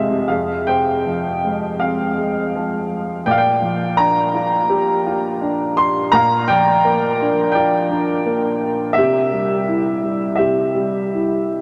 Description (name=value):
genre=classical, lyrical solo piano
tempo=83 BPM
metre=4/4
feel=uneven beats, rubato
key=F harmonic minor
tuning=A4 = 440 Hz
part: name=warm baby grand piano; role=solo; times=0.0-11.6 s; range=F2 to C6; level=-18 LUFS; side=equal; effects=none
room=wet huge ambient reverb, RT60 6.4 s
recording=none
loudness=-18 LUFS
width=mono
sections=0.3-11.6 A section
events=none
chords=0.3 Fmadd9; 3.3 Bb6; 6.1 Gm7/Bb; 9.0 C